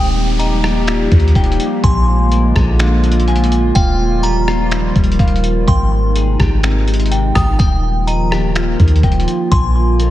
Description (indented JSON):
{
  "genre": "hip hop, atmospheric cloud-rap",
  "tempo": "125 BPM",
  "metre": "4/4",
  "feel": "half-time",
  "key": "Eb major",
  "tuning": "A4 = 440 Hz",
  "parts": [
    { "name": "delicate synth tine bell", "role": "melody", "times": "0.0-10.0 s", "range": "G5 to Eb6", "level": "-23 LUFS", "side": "equal", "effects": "chorus, phaser, analog delay" },
    { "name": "warbly tape-like pad", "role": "sustained chords", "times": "0.0-10.1 s", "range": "C3 to G4", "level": "-18 LUFS", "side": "equal", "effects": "chorus, built-in reverb, sidechain pumping" },
    { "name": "semi-hollow electric guitar", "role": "arpeggios", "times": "0.0-10.1 s", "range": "G3 to Ab5", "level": "-24 LUFS", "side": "left 3 dB", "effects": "analog chorus, analog delay" },
    { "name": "soft 808-style bass", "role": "bass", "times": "0.0-10.1 s", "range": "Eb1 to Eb2", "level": "-14 LUFS", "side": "equal", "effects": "none" },
    { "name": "downlifter", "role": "sound effects", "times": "0.0-3.8 s", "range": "none", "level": "-30 LUFS", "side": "equal", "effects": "none" },
    { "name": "trip hop sampler-style drum kit", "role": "drums", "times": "0.4-10.1 s", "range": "finger snaps, hi-hat, kick drum, rim click", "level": "-16 LUFS", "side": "equal", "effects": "none" }
  ],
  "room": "moderate lush hall reverb, RT60 2.1 s",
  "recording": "dreamy mix soaked in reverb",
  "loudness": "-11 LUFS",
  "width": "side -14 dB against mid",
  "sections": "0.0-10.1 A section",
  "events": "none",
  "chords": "0.0 Ebadd9; 1.8 Bb7; 3.8 Ebadd9; 5.7 Abmaj7; 7.6 Ebadd9; 9.5 Bb7"
}